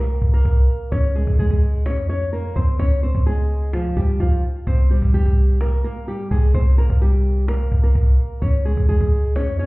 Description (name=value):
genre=hip hop, trap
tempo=128 BPM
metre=4/4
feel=half-time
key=unclear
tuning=A4 = 441 Hz
part: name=nylon-string guitar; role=melody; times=0.0-9.7 s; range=F3 to Db5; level=-25 LUFS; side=equal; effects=low-pass filter, ping-pong delay
part: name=clean 808-style bass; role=bass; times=0.0-9.7 s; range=C2 to F2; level=-17 LUFS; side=equal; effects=none
part: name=cajon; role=drums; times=0.1-9.7 s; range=none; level=-27 LUFS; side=equal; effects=none
room=little or no reverb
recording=heard muffled through a wall, club reverb, EQ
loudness=-16 LUFS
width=side -22 dB against mid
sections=0.0-9.7 A section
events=none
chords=0.0 C5; 0.9 Db; 4.7 C5; 8.4 Db